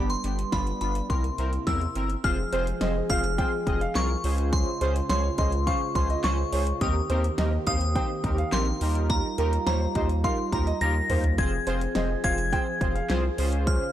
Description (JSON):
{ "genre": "synth-pop", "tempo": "105 BPM", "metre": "4/4", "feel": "straight", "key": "unclear", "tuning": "A4 = 440 Hz", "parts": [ { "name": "glassy synth bell", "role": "melody", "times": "0.0-13.9 s", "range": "Bb5 to Bb6", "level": "-31 LUFS", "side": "left 1 dB", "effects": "chorus, phaser, analog delay" }, { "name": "analog synth brass", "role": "accompaniment", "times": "0.0-13.8 s", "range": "B3 to Eb5", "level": "-32 LUFS", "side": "equal", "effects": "chorus" }, { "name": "dark brass ensemble", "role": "sustained chords", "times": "0.0-13.9 s", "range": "C3 to C5", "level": "-34 LUFS", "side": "right 1 dB", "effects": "stereo widening" }, { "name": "round analog bass", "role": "bass", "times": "0.0-13.8 s", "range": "F1 to E2", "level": "-27 LUFS", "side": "equal", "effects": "tube saturation" }, { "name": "pop drum kit", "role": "drums", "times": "0.1-13.8 s", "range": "handclaps, hi-hat, kick drum, snare drum, toms", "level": "-29 LUFS", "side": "equal", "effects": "overdrive" }, { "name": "dark grand piano", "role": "second line", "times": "2.5-13.1 s", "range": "Bb4 to G5", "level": "-34 LUFS", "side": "right 3 dB", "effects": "analog delay" } ], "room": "little or no reverb", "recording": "dry, gritty hardware recording, transformer saturation", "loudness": "-23 LUFS", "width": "side -12 dB against mid", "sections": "0.0-2.2 A section; 2.2-13.9 B section", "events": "drum fill 10.8-11.4", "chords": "0.0 G; 1.1 C7; 2.2 Fm; 4.2 Dbmaj7; 6.8 Cm7/Eb; 8.8 Ebadd9; 11.4 Fm; 13.4 Dbmaj7" }